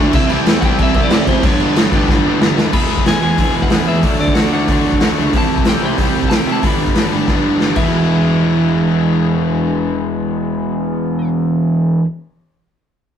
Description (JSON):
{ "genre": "punk rock", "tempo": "185 BPM", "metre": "4/4", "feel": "straight", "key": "unclear", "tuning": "A4 = 440 Hz", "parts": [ { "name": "cranked stack guitar", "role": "riff", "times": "0.0-12.1 s", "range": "G2 to G#4", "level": "-20 LUFS", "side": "left 8 dB", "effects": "overdrive" }, { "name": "overdriven semi-hollow guitar", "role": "riff", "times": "0.0-12.1 s", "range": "E2 to D4", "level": "-17 LUFS", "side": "right 4 dB", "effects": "none" }, { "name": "fuzz picked electric bass", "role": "bass", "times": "0.0-12.0 s", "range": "E1 to C3", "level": "-23 LUFS", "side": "equal", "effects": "overdrive" }, { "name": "raw garage drum kit", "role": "drums", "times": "0.1-7.8 s", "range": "crash cymbal, hi-hat, kick drum, snare drum", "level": "-16 LUFS", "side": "equal", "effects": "none" }, { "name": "lightly driven lead guitar", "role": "melody", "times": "0.2-11.3 s", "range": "B4 to B5", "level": "-24 LUFS", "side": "equal", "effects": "none" } ], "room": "moderate studio reverb, RT60 0.7 s", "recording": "rough rehearsal-room recording", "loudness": "-12 LUFS", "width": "side -9 dB against mid", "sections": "0.0-2.7 A section; 2.7-7.9 B section; 7.9-10.5 C section", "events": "drum fill 2.1-2.7, 7.3-7.9", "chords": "0.1 C; 1.4 G; 2.7 E; 4.0 D; 5.3 C; 6.6 G; 7.8 E" }